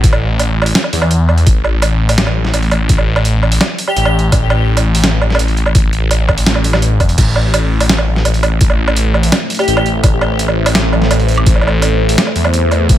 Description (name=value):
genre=half-time drum and bass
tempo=168 BPM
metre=4/4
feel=half-time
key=A minor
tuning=A4 = 440 Hz
part: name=phased detuned saw bass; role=bass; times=0.0-13.0 s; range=A1 to E2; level=-13 LUFS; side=equal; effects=phaser
part: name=boom bap sampler-style drum kit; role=drums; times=0.0-13.0 s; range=crash cymbal, hi-hat, snare drum, woodblock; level=-16 LUFS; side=right 2 dB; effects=overdrive
part: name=electronic kick drum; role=drums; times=0.0-13.0 s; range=none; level=-11 LUFS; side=equal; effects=overdrive
part: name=airy dreamy lead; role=melody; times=3.9-4.1, 9.6-9.9 s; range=G4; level=-20 LUFS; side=left 3 dB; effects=chorus, ping-pong delay
part: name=deep dark ambient pad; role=sustained chords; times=8.1-13.0 s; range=A3 to E5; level=-20 LUFS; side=equal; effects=chorus, built-in reverb, vintage 12-bit sampler grit, sidechain pumping
room=digital ambience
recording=none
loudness=-10 LUFS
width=side -12 dB against mid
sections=0.0-13.0 A section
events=none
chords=0.0 Am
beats=| 0.04 0.39 0.75 1.11 | 1.47 1.82 2.18 2.54 | 2.89 3.25 3.61 3.96 | 4.32 4.68 5.04 5.39 | 5.75 6.11 6.46 6.82 | 7.18 7.54 7.89 8.25 | 8.61 8.96 9.32 9.68 | 10.04 10.39 10.75 11.11 | 11.46 11.82 12.18 12.54 | 12.89